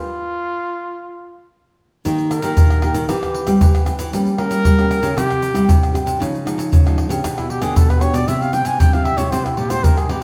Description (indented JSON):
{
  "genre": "samba and choro",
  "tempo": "116 BPM",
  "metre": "4/4",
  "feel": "straight",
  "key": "unclear",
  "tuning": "A4 = 440 Hz",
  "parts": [
    { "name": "breathy trumpet", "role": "melody", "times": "0.0-10.2 s", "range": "E4 to Ab5", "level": "-25 LUFS", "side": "equal", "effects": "none" },
    { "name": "nylon-string guitar", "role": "accompaniment", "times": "2.0-10.2 s", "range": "G2 to G4", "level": "-25 LUFS", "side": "equal", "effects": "none" },
    { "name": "nylon-string guitar", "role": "bass", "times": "2.0-10.2 s", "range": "Bb2 to G3", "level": "-24 LUFS", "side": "equal", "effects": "none" },
    { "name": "tube shaker, surdo, pandeiro and tamborim", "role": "percussion", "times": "2.1-10.2 s", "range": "none", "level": "-19 LUFS", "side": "equal", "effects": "none" }
  ],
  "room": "wet stone room reverb, RT60 1.3 s",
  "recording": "band playing live in one room",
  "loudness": "-17 LUFS",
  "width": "mono",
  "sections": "0.0-2.1 A section; 2.1-10.2 B section",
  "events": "stop 0.0-2.1; trumpet solo 2.1-10.2",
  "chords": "0.0 N.C.; 2.1 Eb; 3.1 C/E; 4.1 Gdim; 5.2 C; 6.2 Dbadd9; 7.2 G/B; 8.3 C",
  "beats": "0.49 1.01 1.53 | 2.05 2.57 3.09 3.61 | 4.13 4.65 5.17 5.69 | 6.21 6.73 7.25 7.77 | 8.29 8.81 9.33 9.85"
}